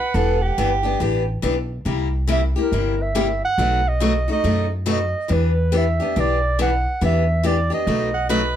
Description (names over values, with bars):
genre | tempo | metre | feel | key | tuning
acoustic string swing (jazz manouche) | 140 BPM | 4/4 | swing 63% on 8ths | E minor | A4 = 439 Hz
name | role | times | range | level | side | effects
breathy clarinet | melody | 0.0-8.5 s | Bb4 to F#5 | -23 LUFS | right 3 dB | none
clear soprano saxophone | second line | 0.0-1.3, 8.1-8.6 s | G4 to F#5 | -23 LUFS | right 4 dB | none
picked steel-string acoustic guitar | accompaniment | 0.1-8.4 s | B2 to G4 | -23 LUFS | left 3 dB | none
upright bass | bass | 0.1-8.6 s | E1 to F#2 | -22 LUFS | equal | none
room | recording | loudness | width
moderate studio reverb, RT60 0.7 s | none | -18 LUFS | side -10 dB against mid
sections
0.0-8.6 A section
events
none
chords
0.0 Em9; 1.9 C7; 3.6 B7; 5.3 Em7; 7.9 B7